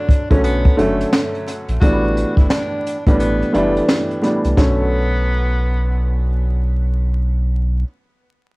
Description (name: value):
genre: hip hop, boom-bap hip-hop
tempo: 87 BPM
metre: 4/4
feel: swing 62% on 16ths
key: B minor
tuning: A4 = 439 Hz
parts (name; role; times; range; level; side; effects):
- breathy tenor saxophone; melody; 0.0-6.6 s; A3 to F#4; -26 LUFS; equal; high-pass filter, low-pass filter, cassette tape, tape echo
- dark grand piano; accompaniment; 0.0-7.8 s; A2 to C#5; -19 LUFS; equal; high-pass filter, low-pass filter, cassette tape
- jazz brush drum kit; drums; 0.1-4.8 s; hi-hat, kick drum, snare drum; -16 LUFS; equal; cassette tape
- soft dub sub bass; bass; 0.3-7.8 s; F#1 to C2; -18 LUFS; equal; none
room: little or no reverb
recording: home recording on cassette, vinyl crackle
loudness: -15 LUFS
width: side -25 dB against mid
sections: 0.0-4.6 A section; 4.6-7.3 B section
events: none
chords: 0.0 Bm9; 1.8 A7sus4; 4.6 Bm9